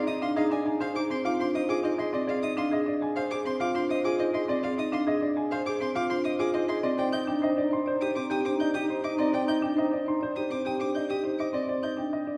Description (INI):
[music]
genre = classical, minimalist pattern music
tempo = 102 BPM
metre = 4/4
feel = straight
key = F dorian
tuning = A4 = 440 Hz
[part]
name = warm baby grand piano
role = melody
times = 0.0-12.4 s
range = G4 to C6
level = -34 LUFS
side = equal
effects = none
[part]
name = hollow alto flute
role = second line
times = 0.0-2.0, 7.0-11.4 s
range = Eb4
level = -34 LUFS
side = equal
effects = none
[part]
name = marimba with medium mallets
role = arpeggios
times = 0.0-12.4 s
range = C4 to D5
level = -31 LUFS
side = equal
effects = none
[part]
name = warm violin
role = arpeggios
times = 0.0-11.9 s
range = Eb5 to G6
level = -39 LUFS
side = equal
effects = none
[sound]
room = wet scoring stage reverb, RT60 1.6 s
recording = recorded in a church or concert hall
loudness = -28 LUFS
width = mono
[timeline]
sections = 0.0-12.4 A section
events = none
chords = 0.0 Fm7; 7.0 Cm